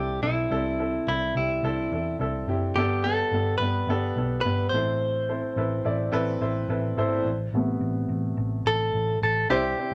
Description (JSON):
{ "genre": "piano-driven pop", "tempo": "107 BPM", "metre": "4/4", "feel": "straight", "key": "unclear", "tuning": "A4 = 440 Hz", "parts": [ { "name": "direct-recorded clean electric guitar", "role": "melody", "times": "0.0-9.9 s", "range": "E4 to C5", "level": "-29 LUFS", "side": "equal", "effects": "none" }, { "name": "warm baby grand piano", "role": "accompaniment", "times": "0.0-9.9 s", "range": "G2 to D5", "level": "-31 LUFS", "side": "equal", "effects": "none" }, { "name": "vintage muted picked electric bass", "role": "bass", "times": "0.0-9.9 s", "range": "F#1 to E2", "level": "-31 LUFS", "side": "equal", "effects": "none" } ], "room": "wet studio reverb, RT60 0.7 s", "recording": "none", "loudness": "-26 LUFS", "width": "mono", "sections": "0.0-7.3 A section; 7.3-9.5 B section", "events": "grand piano solo 7.3-9.5", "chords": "0.0 Cadd9; 2.8 Gadd9; 4.7 Amadd9" }